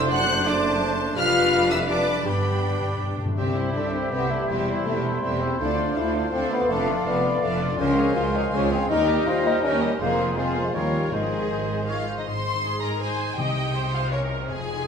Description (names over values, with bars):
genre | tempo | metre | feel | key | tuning
classical, dramatic, fast romantic movement for symphony orchestra | 163 BPM | 3/4 | straight | C major, Ab major from 7.8 s | A4 = 442 Hz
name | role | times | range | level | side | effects
mellow clarinet | second line | 0.0-12.0 s | D4 to D5 | -33 LUFS | left 1 dB | none
rich studio violin section | second line | 0.0-14.9 s | C4 to A5 | -35 LUFS | left 2 dB | none
warm oboe | second line | 0.0-12.3 s | G4 to D5 | -33 LUFS | right 1 dB | none
clear symphonic viola section | accompaniment | 0.0-14.9 s | C4 to Eb5 | -31 LUFS | right 1 dB | none
dark bassoon | accompaniment | 0.0-12.1 s | Eb3 to A3 | -32 LUFS | right 2 dB | none
mellow French horn section | sustained chords | 0.0-11.9 s | G3 to F#4 | -26 LUFS | left 2 dB | none
concert harp | arpeggios | 0.0-14.9 s | F2 to D6 | -32 LUFS | left 5 dB | none
rich symphonic cello section | bass | 0.0-14.9 s | C2 to C3 | -32 LUFS | right 3 dB | none
warm symphonic double bass section | bass | 0.0-14.9 s | E1 to Eb2 | -31 LUFS | right 4 dB | none
warm symphonic violin section | melody | 0.1-14.9 s | C5 to F#6 | -30 LUFS | left 1 dB | none
hollow concert flute | second line | 0.1-12.1 s | B4 to F#5 | -32 LUFS | left 1 dB | none
timpani | percussion | 2.3-3.3, 11.1-13.9 s | G2 to C3 | -32 LUFS | left 1 dB | none
room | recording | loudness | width
wet recital hall reverb, RT60 1.3 s | minimal, uncompressed stereo recording | -21 LUFS | side -7 dB against mid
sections
0.0-3.4 A section; 3.4-12.3 B section; 12.3-14.9 C section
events
timpani fill 2.3-3.4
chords
0.1 D7/F#; 1.2 G7/F; 2.3 G; 3.4 C; 4.5 C/E; 5.6 Dm7; 6.7 Dm/F; 7.8 Dbmaj7; 8.9 Eb; 10.0 Fm; 10.7 Eb9; 11.1 Ab; 13.4 Ab/C